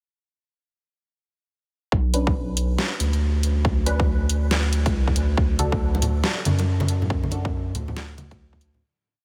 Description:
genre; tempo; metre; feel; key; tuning
deep dubstep; 139 BPM; 4/4; swing 61% on 16ths, half-time; B minor; A4 = 440 Hz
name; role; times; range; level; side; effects
saturated sub bass; bass; 1.9-8.8 s; B1 to F#2; -25 LUFS; equal; none
electronic kick drum; drums; 1.9-8.6 s; none; -26 LUFS; equal; overdrive
filtered dub chord stab; stabs; 2.1-7.5 s; F#3 to B4; -35 LUFS; equal; phaser, subtle chorus, dub echo
dubstep drum kit; drums; 2.1-8.7 s; hi-hat, snare drum; -31 LUFS; equal; overdrive
congas and bongos; percussion; 5.6-8.8 s; none; -31 LUFS; equal; none
room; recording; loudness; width
light reverb; none; -23 LUFS; mono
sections
1.9-8.8 drop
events
drop 1.9-8.8; fade-out 6.5-8.8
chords
1.9 Bm; 5.4 D

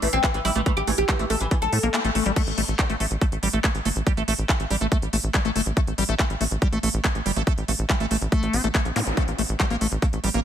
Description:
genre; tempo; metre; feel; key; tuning
psychedelic trance; 141 BPM; 4/4; straight; unclear; A4 = 441 Hz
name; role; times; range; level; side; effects
oud; melody; 0.0-2.3 s; E3 to A4; -26 LUFS; left 1 dB; phaser, sidechain pumping, tape echo
liquid acid bass; riff; 0.0-10.4 s; G3 to C4; -27 LUFS; moving between left 8 dB and right 6 dB; chorus, auto-pan, sidechain pumping, tape echo
tight sequencer bass; bass; 0.0-10.4 s; G1 to A2; -26 LUFS; equal; none
techno drum kit; drums; 0.0-10.4 s; crash cymbal, handclaps, hi-hat; -28 LUFS; right 1 dB; none
electronic kick drum; drums; 0.2-10.1 s; none; -22 LUFS; equal; overdrive
zap; sound effects; 9.0-9.1 s; none; -32 LUFS; equal; none
room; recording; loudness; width
little or no reverb; none; -21 LUFS; side -10 dB against mid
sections
0.0-2.4 A section; 2.4-10.4 B section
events
filter sweep on acid bass 0.0-2.4; kick drops out 1.9-2.4; band accent 1.9; drop 2.4-10.4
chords
0.0 A5

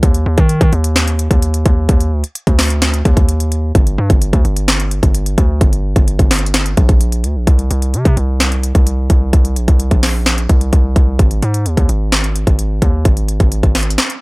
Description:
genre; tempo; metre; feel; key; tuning
hip hop, trap; 129 BPM; 4/4; half-time; unclear; A4 = 440 Hz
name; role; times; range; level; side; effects
distorted 808-style bass; bass; 0.0-14.0 s; G1 to Eb3; -15 LUFS; equal; distortion
trap drum kit; drums; 0.0-14.2 s; hi-hat, kick drum, snare drum; -12 LUFS; equal; none
room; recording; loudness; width
little or no reverb; dry, gritty hardware recording; -11 LUFS; side -26 dB against mid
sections
0.0-7.5 A section; 7.5-14.2 B section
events
kick muted 14.0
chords
none

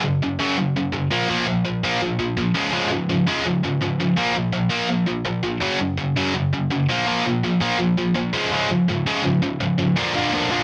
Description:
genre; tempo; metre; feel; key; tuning
punk; 166 BPM; 4/4; straight; unclear; A4 = 445 Hz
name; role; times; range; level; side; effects
overdriven electric guitar; solo; 0.0-10.6 s; Gb2 to D4; -21 LUFS; equal; none
room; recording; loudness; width
light reverb; dense, heavily limited modern master; -21 LUFS; mono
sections
0.0-10.0 A section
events
none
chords
0.0 Gb5; 1.1 Bb5; 2.6 Db; 4.2 Bb5; 5.6 Gb5; 6.9 Bb5; 8.3 Db; 10.0 Bb

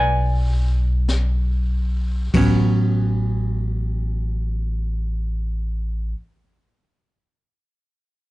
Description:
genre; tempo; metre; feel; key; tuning
jazz ballad; 47 BPM; 4/4; swing 68% on 8ths; A major; A4 = 438 Hz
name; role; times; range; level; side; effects
hollow-body jazz guitar; accompaniment; 0.0-6.2 s; F#3 to G#5; -22 LUFS; right 1 dB; none
upright bass; bass; 0.0-6.1 s; A1 to B1; -20 LUFS; equal; none
jazz brush drum kit; drums; 1.1-2.9 s; brushed snare drum, crash cymbal, hi-hat, kick drum, snare drum, toms; -26 LUFS; left 2 dB; none
room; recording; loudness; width
little or no reverb; dark, warm production, nothing above 10.9 kHz; -19 LUFS; side -18 dB against mid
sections
0.0-2.3 A section; 2.3-7.5 B section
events
slowing down 0.0-2.3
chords
0.0 E7 (rootless); 2.3 A69

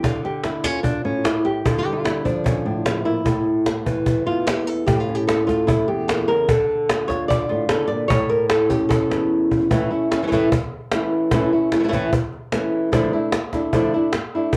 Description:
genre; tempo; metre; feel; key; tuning
flamenco; 149 BPM; 4/4; straight; A phrygian dominant; A4 = 440 Hz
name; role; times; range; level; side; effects
flamenco guitar; melody; 0.0-14.6 s; E2 to D5; -22 LUFS; equal; cassette tape
cajon; percussion; 0.0-14.6 s; none; -26 LUFS; equal; none
room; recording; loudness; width
moderate studio reverb, RT60 0.6 s; home recording on cassette; -20 LUFS; mono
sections
0.0-9.7 A section; 9.7-14.6 B section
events
nylon-string guitar solo 0.0-9.7; drum fill 9.1-9.7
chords
0.0 Dm; 3.3 A; 6.5 Dm; 8.1 A; 12.9 Dmadd9

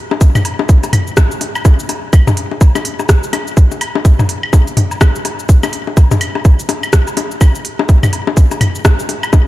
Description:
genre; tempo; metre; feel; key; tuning
techno; 125 BPM; 4/4; swing 60% on 16ths; none; none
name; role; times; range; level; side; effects
electronic bongos, woodblock and toms; percussion; 0.1-9.4 s; none; -16 LUFS; left 3 dB; ping-pong delay
electronic kick drum; drums; 0.2-9.4 s; none; -9 LUFS; equal; none
garage drum kit; drums; 0.2-9.4 s; cabasa, hi-hat, rim click; -20 LUFS; equal; none
room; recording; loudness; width
little or no reverb; none; -10 LUFS; side -16 dB against mid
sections
0.0-9.5 A section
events
none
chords
none

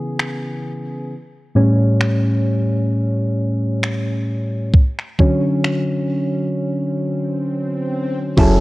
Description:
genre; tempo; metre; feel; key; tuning
contemporary R&B; 66 BPM; 4/4; swing 54% on 16ths; unclear; A4 = 439 Hz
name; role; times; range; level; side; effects
soft electric-piano-like synth keys; accompaniment; 0.0-8.6 s; A2 to A4; -18 LUFS; equal; chorus
crisp 8-bit digital drum machine; drums; 0.2-8.6 s; finger snaps, hi-hat, kick drum; -15 LUFS; equal; overdrive
swell and downlifter; sound effects; 7.1-8.6 s; none; -29 LUFS; equal; none
warm 808-style bass; bass; 8.4-8.6 s; F#1; -15 LUFS; equal; none
room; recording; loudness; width
little or no reverb; worn, warbling old tape, cassette tape, warbly pitch drift; -17 LUFS; side -19 dB against mid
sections
0.0-8.4 A section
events
synth keys solo 0.0-8.4; swell 7.1-8.4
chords
0.0 C#m7; 1.1 A7; 4.7 Dmaj7

